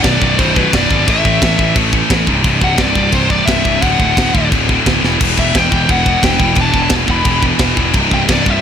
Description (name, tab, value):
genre	heavy metal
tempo	175 BPM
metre	4/4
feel	straight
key	unclear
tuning	A4 = 442 Hz
part	high-gain lead guitar	melody	0.0-8.6 s	B4 to B5	-18 LUFS	left 1 dB	distortion, digital delay
part	scooped high-gain guitar	riff	0.0-8.6 s	B1 to A3	-14 LUFS	left 1 dB	distortion
part	fuzz picked electric bass	bass	0.0-8.6 s	B0 to A1	-18 LUFS	equal	overdrive
part	tight metal drum kit	drums	0.0-8.5 s	crash cymbal, kick drum, snare drum	-16 LUFS	equal	none
room	light reverb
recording	none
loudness	-10 LUFS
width	side -8 dB against mid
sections	0.0-8.6 A section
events	drum fill 5.0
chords	0.0 Bm; 1.1 A5; 2.3 C; 3.8 D; 5.0 Em; 7.9 C5